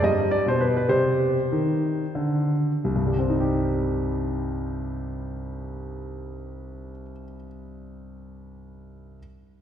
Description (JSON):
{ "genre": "classical, baroque-style suite movement for grand piano", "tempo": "57-71 BPM (dotted quarters)", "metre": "6/8", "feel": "rubato", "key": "C minor", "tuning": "A4 = 440 Hz", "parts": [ { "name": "warm concert grand piano", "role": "solo", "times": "0.0-9.2 s", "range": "C2 to Eb5", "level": "-24 LUFS", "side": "equal", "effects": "none" } ], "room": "wet church reverb, RT60 3.1 s", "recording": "heard from further back in the room", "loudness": "-22 LUFS", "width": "side -9 dB against mid", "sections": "0.0-2.8 A section; 2.8-7.0 B section", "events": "slowing down 0.0-2.8", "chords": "0.0 G; 0.9 Cm" }